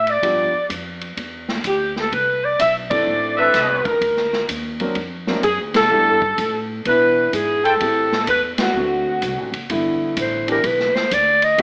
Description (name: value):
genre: jazz, big band swing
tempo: 127 BPM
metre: 4/4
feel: swing 66% on 8ths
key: G major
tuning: A4 = 441 Hz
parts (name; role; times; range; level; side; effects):
- warm saxophone section; melody; 0.0-9.5 s; F#4 to E5; -20 LUFS; equal; none
- upright bass; bass; 0.0-11.6 s; F#1 to B2; -34 LUFS; equal; none
- swinging big-band drum kit; drums; 0.1-11.6 s; hi-hat, kick drum, ride cymbal, snare drum; -29 LUFS; equal; none
- warm concert grand piano; accompaniment; 0.2-11.6 s; D3 to A#4; -27 LUFS; equal; none
- warm trumpet section; stabs; 3.4-4.0, 7.6-7.8 s; C4 to G5; -22 LUFS; equal; none
- breathy clarinet; melody; 10.2-11.6 s; Bb4 to Eb5; -18 LUFS; equal; none
- warm trombone section; sustained chords; 10.5-11.6 s; E3 to G4; -29 LUFS; equal; none
room: moderate large studio reverb, RT60 1.4 s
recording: AM radio sound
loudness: -19 LUFS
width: mono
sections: 0.0-9.7 A section; 9.7-11.6 B section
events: band accent 2.8, 5.7, 8.5; clarinet solo 9.7-11.6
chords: 0.2 G7; 2.1 C69; 4.0 D7alt; 5.9 G6; 6.9 E7; 7.8 Am7; 8.7 D7; 9.7 G6